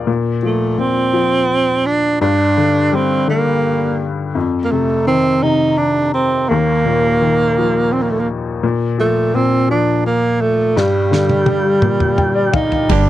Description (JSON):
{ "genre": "six-eight pop ballad", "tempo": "56 BPM (dotted quarters)", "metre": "6/8", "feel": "straight", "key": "G minor", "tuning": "A4 = 441 Hz", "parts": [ { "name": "clear upright piano", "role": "accompaniment", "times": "0.0-13.1 s", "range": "Eb2 to G5", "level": "-17 LUFS", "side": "left 4 dB", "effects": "none" }, { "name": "breathy tenor saxophone", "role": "melody", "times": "0.4-13.1 s", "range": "G3 to Eb4", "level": "-15 LUFS", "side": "right 3 dB", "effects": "none" }, { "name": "damped 70s drum kit", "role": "drums", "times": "10.8-13.1 s", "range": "crash cymbal, kick drum, snare drum, toms", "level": "-18 LUFS", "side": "equal", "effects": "none" }, { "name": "direct-recorded clean electric guitar", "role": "arpeggios", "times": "12.9-13.1 s", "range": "G2 to G4", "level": "-19 LUFS", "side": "right 11 dB", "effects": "tremolo" }, { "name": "mellow fretless electric bass", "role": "bass", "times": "12.9-13.1 s", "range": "G1", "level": "-13 LUFS", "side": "right 1 dB", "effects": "lush chorus" } ], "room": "little or no reverb", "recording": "dry, close 1970s-style studio recording", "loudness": "-13 LUFS", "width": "side -13 dB against mid", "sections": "0.0-12.9 A section", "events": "drum fill 10.8-12.9; upright piano fill 11.8-12.9", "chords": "0.1 Bb5; 2.2 Gm; 4.4 F5; 6.5 Ebsus2; 8.6 Bb5; 10.8 Gm", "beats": "| 0.08 1.14 | 2.21 3.28 | 4.36 5.43 | 6.50 7.57 | 8.63 9.69 | 10.76 11.83 | 12.90" }